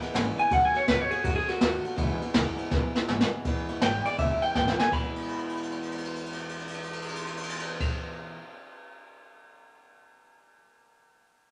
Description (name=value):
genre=rockabilly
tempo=163 BPM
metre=4/4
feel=swing 64% on 8ths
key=E major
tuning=A4 = 439 Hz
part: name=picked acoustic archtop guitar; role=accompaniment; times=0.0-8.4 s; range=E2 to F#4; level=-37 LUFS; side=equal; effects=none
part: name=upright bass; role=bass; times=0.0-7.8 s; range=E1 to F#2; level=-37 LUFS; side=equal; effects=none
part: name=jazz brush drum kit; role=drums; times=0.0-9.3 s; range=crash cymbal, kick drum, ride cymbal, snare drum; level=-32 LUFS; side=equal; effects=none
part: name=electric guitar through a small old amp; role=melody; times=0.4-7.8 s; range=F#4 to B5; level=-29 LUFS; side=equal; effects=none
room=moderate studio reverb, RT60 0.8 s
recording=none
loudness=-28 LUFS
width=mono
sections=0.0-3.5 A section; 3.5-4.9 B section; 4.9-7.9 C section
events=drum fill 2.7-3.5, 4.6-4.9, 5.1-7.8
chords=0.0 E; 0.5 B7; 2.0 E